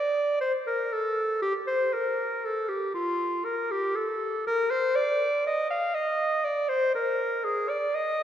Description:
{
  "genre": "classical, baroque-style fantasia for unaccompanied clarinet",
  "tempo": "59 BPM",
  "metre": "3/4",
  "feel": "rubato",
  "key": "Bb major",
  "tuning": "A4 = 439 Hz",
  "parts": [
    { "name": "warm clarinet", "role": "solo", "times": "0.0-8.2 s", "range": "F4 to F5", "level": "-25 LUFS", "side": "equal", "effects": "none" }
  ],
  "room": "wet church reverb, RT60 2.7 s",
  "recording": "heard from further back in the room",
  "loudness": "-25 LUFS",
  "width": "side -10 dB against mid",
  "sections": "0.0-8.2 A section",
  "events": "none",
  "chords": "none",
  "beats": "0.90 1.93 | 2.94 3.95 4.96 | 5.96 6.95 7.95"
}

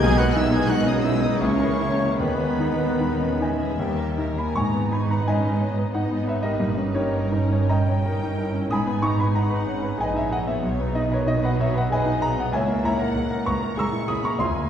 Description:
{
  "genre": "classical",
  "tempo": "74-98 BPM",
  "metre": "3/4",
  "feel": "rubato",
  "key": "G# minor",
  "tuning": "A4 = 440 Hz",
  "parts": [
    { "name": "clear concert grand piano", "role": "melody", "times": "0.0-14.7 s", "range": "B1 to E6", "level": "-24 LUFS", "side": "left 1 dB", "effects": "none" },
    { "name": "warm symphonic violin section", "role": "melody", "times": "0.0-14.5 s", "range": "G#4 to G#6", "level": "-39 LUFS", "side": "left 3 dB", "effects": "none" },
    { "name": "dark clarinet", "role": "second line", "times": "0.0-4.2 s", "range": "G4 to G#4", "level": "-37 LUFS", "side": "left 4 dB", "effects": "none" },
    { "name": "hollow concert flute", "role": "second line", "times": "0.0-3.8 s", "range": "B4 to G#5", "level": "-33 LUFS", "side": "equal", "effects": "none" },
    { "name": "rich symphonic violin section", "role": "second line", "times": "0.0-14.7 s", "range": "D#4 to C#6", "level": "-34 LUFS", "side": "left 2 dB", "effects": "none" },
    { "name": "warm oboe", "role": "second line", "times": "0.0-3.8 s", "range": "B4 to G#5", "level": "-33 LUFS", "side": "right 1 dB", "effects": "none" },
    { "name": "warm bassoon", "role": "accompaniment", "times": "0.0-4.2 s", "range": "D#3 to E3", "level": "-31 LUFS", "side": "right 1 dB", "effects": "none" },
    { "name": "warm symphonic viola section", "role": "accompaniment", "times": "0.0-14.5 s", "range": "G3 to E#4", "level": "-31 LUFS", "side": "right 1 dB", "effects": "none" },
    { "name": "dark French horn section", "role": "sustained chords", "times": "0.0-3.8 s", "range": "B3 to G#4", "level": "-29 LUFS", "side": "left 2 dB", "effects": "none" },
    { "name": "mellow trumpet", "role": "stabs", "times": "0.0-3.8 s", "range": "B3 to G#4", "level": "-33 LUFS", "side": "equal", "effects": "none" },
    { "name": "rich symphonic double bass section", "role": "bass", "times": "0.0-14.5 s", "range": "G1 to D#2", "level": "-29 LUFS", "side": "right 2 dB", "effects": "none" },
    { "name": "warm studio cello section", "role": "bass", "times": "0.0-14.5 s", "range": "C#2 to D#3", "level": "-28 LUFS", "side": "right 2 dB", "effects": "none" },
    { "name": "timpani", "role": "percussion", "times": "4.6-5.6 s", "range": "G#2", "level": "-32 LUFS", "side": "equal", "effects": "none" }
  ],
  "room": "wet scoring stage reverb, RT60 2.2 s",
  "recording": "heard from further back in the room",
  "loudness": "-20 LUFS",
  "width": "side -9 dB against mid",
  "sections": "0.0-4.5 A section; 4.5-14.7 B section",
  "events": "none",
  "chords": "0.0 G#m/B; 1.4 A#m7b5/C#; 2.2 G#m/D#; 3.8 D#; 4.5 G#m; 6.6 D#7/G; 8.7 G#m; 10.6 G#m/B; 12.5 A#m7b5/C#",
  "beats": "| 0.02 0.70 1.42 | 2.20 3.01 3.79 | 4.55 5.25 5.93 | 6.60 7.32 8.05 | 8.71 9.36 10.00 | 10.63 11.28 11.92 | 12.54 13.15 13.77 | 14.39"
}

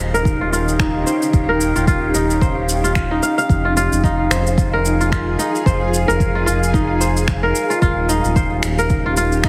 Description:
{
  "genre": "organic downtempo",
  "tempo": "111 BPM",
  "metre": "4/4",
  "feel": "swing 57% on 16ths",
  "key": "unclear",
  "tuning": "A4 = 440 Hz",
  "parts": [
    { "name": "granular cloud pad", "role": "sustained chords", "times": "0.0-9.5 s", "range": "Db4 to Ab4", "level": "-25 LUFS", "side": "equal", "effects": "built-in reverb, sidechain pumping" },
    { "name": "kora", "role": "arpeggios", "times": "0.0-9.5 s", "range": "Eb4 to F5", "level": "-22 LUFS", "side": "equal", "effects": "low-pass filter, digital delay" },
    { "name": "round analog bass", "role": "bass", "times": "0.0-9.5 s", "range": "Eb1 to F1", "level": "-23 LUFS", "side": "equal", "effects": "sidechain pumping" },
    { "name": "wind-like tuned noise texture", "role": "texture", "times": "0.0-9.5 s", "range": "F5", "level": "-32 LUFS", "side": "equal", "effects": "built-in reverb" },
    { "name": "electronic cabasa and finger snaps", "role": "drums", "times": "0.1-9.5 s", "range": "none", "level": "-28 LUFS", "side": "equal", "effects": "small room ambience" },
    { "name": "electronic kick drum", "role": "drums", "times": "0.3-9.5 s", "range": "none", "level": "-20 LUFS", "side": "equal", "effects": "small room ambience" }
  ],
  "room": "moderate lush hall reverb, RT60 2.0 s",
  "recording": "heavily compressed radio sound, multiband compression",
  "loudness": "-17 LUFS",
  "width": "mono",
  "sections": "0.0-9.5 A section",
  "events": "none",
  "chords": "0.0 Eb7; 3.5 Fm7; 7.8 Eb7",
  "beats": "0.26 0.80 | 1.34 1.88 2.42 2.96 | 3.50 4.04 4.58 5.12 | 5.66 6.20 6.74 7.28 | 7.82 8.36 8.90 9.44"
}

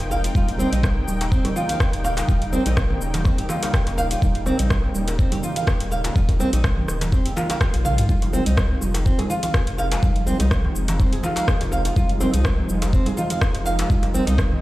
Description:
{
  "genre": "afro house",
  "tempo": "124 BPM",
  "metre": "4/4",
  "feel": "swing 54% on 16ths",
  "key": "unclear",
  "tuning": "A4 = 440 Hz",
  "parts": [
    { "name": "warm analog pad", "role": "sustained chords", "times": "0.0-14.6 s", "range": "C3 to G5", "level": "-29 LUFS", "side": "left 1 dB", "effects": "chorus, sidechain pumping" },
    { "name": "round analog bass", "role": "bass", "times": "0.0-14.6 s", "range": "Eb1 to C2", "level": "-24 LUFS", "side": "equal", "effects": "sidechain pumping" },
    { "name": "afro-pop drum kit", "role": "drums", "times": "0.0-14.5 s", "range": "hi-hat, rim click, shaker, toms", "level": "-29 LUFS", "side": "equal", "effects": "none" },
    { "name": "djembe", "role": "percussion", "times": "0.0-14.4 s", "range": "none", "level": "-31 LUFS", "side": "left 2 dB", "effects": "none" },
    { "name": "flamenco guitar", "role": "arpeggios", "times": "0.1-14.4 s", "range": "C4 to F5", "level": "-26 LUFS", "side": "right 1 dB", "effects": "sidechain pumping, dub echo" },
    { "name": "congas", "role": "percussion", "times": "0.3-14.6 s", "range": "none", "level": "-28 LUFS", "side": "right 3 dB", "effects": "none" },
    { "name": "electronic kick drum", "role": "drums", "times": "0.4-14.5 s", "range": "none", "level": "-20 LUFS", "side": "equal", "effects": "none" },
    { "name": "swell", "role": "sound effects", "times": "7.3-8.1 s", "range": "none", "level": "-40 LUFS", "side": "left 2 dB", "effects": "none" }
  ],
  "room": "little or no reverb",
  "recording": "played on a big sound system in a bare room, stone room reverb",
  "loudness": "-18 LUFS",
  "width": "side -17 dB against mid",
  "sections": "0.0-14.6 A section",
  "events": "swell 7.3-8.1; drum fill 7.6-8.1",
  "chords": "0.4 Eb7; 8.1 Fm7",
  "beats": "| 0.35 0.83 1.32 1.80 | 2.29 2.77 3.25 3.74 | 4.22 4.71 5.19 5.67 | 6.16 6.64 7.12 7.61 | 8.09 8.58 9.06 9.54 | 10.03 10.51 11.00 11.48 | 11.96 12.45 12.93 13.41 | 13.90 14.38"
}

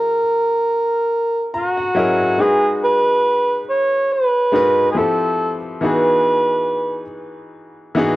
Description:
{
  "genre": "R&B",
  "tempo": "70 BPM",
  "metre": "4/4",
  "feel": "swing 54% on 16ths",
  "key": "G# minor",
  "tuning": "A4 = 436 Hz",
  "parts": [
    { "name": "dark cor anglais", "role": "melody", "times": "0.0-7.1 s", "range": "F#4 to C#5", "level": "-16 LUFS", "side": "right 1 dB", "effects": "cassette tape" },
    { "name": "clear grand piano", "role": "accompaniment", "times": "0.0-8.2 s", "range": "E3 to A#5", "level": "-20 LUFS", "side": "left 1 dB", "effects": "cassette tape" }
  ],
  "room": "little or no reverb",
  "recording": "home recording on cassette",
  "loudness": "-15 LUFS",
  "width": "side -18 dB against mid",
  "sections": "0.0-2.4 A section; 2.4-8.2 B section",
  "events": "grand piano fill 1.1-2.4",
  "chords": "0.0 F#7; 2.4 G#m7; 5.0 Fmaj9; 5.8 Emaj9",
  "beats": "0.67 1.53 | 2.39 3.25 4.10 4.96 | 5.82 6.67 7.53"
}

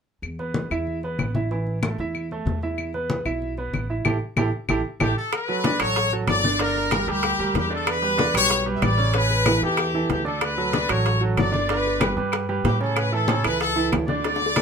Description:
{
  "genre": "latin, salsa",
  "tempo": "188 BPM",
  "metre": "4/4",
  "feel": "straight",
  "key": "unclear",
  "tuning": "A4 = 439 Hz",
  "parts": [
    { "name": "upright bass", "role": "bass", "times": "0.2-14.6 s", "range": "G1 to A2", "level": "-27 LUFS", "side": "equal", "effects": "none" },
    { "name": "claves", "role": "percussion", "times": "0.2-14.6 s", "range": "none", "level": "-30 LUFS", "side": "left 4 dB", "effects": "none" },
    { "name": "congas", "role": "percussion", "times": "0.2-14.6 s", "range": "none", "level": "-28 LUFS", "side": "left 3 dB", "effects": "none" },
    { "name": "bright concert grand piano", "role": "accompaniment", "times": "0.4-14.6 s", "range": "C#3 to E5", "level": "-26 LUFS", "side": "right 4 dB", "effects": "none" },
    { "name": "brilliant trumpet section", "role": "melody", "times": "5.0-14.6 s", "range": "G4 to E5", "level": "-23 LUFS", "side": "left 2 dB", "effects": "none" },
    { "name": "bongos", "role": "percussion", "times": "5.3-14.6 s", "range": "none", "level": "-32 LUFS", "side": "left 9 dB", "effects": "none" },
    { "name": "timbales", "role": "percussion", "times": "5.3-14.6 s", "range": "none", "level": "-29 LUFS", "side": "right 6 dB", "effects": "none" }
  ],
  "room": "moderate studio reverb, RT60 0.5 s",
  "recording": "minimal, uncompressed stereo recording",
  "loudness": "-20 LUFS",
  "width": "side -6 dB against mid",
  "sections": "0.2-5.3 A section; 5.3-14.6 B section",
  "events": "band accent 4.1-5.3; drum fill 14.2-14.6",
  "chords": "0.2 E5; 1.5 A5; 2.8 E5; 4.1 A5; 5.3 D6; 6.6 Gm; 7.9 Em7; 9.1 Aadd9; 10.4 Dmaj7; 11.7 G; 13.0 A",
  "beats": "| 0.23 0.55 0.87 1.19 | 1.50 1.82 2.14 2.46 | 2.78 3.10 3.42 3.73 | 4.05 4.37 4.69 5.01 | 5.33 5.64 5.96 6.28 | 6.60 6.92 7.23 7.55 | 7.87 8.19 8.51 8.82 | 9.14 9.46 9.78 10.10 | 10.42 10.74 11.06 11.38 | 11.69 12.01 12.33 12.65 | 12.97 13.29 13.61 13.93 | 14.25 14.57"
}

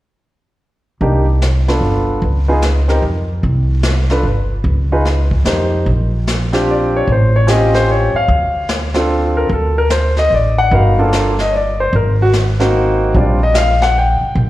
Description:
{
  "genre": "jazz piano trio",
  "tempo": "148 BPM",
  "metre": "3/4",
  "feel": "swing 64% on 8ths",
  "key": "Bb major",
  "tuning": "A4 = 440 Hz",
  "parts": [
    { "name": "warm grand piano", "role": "melody", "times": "1.0-14.5 s", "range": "G3 to G5", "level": "-15 LUFS", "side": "left 1 dB", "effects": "slapback echo" },
    { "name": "upright bass", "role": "bass", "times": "1.0-14.5 s", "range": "G1 to F2", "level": "-15 LUFS", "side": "equal", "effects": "none" },
    { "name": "jazz brush drum kit", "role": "drums", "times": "1.0-14.5 s", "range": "brushed snare drum, hi-hat, kick drum, snare drum", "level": "-22 LUFS", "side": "equal", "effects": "slapback echo" }
  ],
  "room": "light reverb, studio ambience",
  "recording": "live gig heard through the venue's PA, recital hall reverb",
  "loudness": "-12 LUFS",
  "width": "side -15 dB against mid",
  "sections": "1.0-5.9 A section; 5.9-14.5 B section",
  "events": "none",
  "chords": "1.0 Cm7; 1.8 G9; 2.2 N.C.; 5.5 F7sus4; 5.9 Bb69; 7.1 A7alt; 8.3 Dm7; 9.5 D5; 10.7 Gm9; 11.9 Ab9; 13.1 Bb6",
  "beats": "| 1.01 1.41 1.81 | 2.22 2.62 3.03 | 3.43 3.84 4.24 | 4.65 5.05 5.46 | 5.86 6.26 6.67 | 7.07 7.48 7.88 | 8.29 8.69 9.10 | 9.50 9.90 10.31 | 10.71 11.12 11.52 | 11.93 12.33 12.74 | 13.14 13.55 13.95 | 14.36"
}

